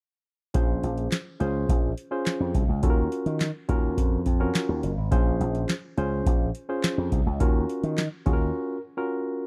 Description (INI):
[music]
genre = early-eighties boogie funk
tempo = 105 BPM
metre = 4/4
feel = straight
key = Bb minor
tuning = A4 = 440 Hz
[part]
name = barky tine electric piano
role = accompaniment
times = 0.5-9.5 s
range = Db4 to C5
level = -32 LUFS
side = equal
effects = overdrive
[part]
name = slap bass with an envelope filter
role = bass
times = 0.5-8.5 s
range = Gb1 to Eb3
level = -29 LUFS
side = equal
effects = none
[part]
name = booming analog drum machine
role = drums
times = 0.5-8.5 s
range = handclaps, hi-hat, kick drum, snare drum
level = -26 LUFS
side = equal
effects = none
[sound]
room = little or no reverb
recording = dry, close 1970s-style studio recording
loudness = -26 LUFS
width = mono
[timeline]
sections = 0.5-9.5 A section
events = break 8.5-9.5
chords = 0.5 Bbm9; 2.8 Ebm9; 5.1 Bbm9; 7.4 Ebm9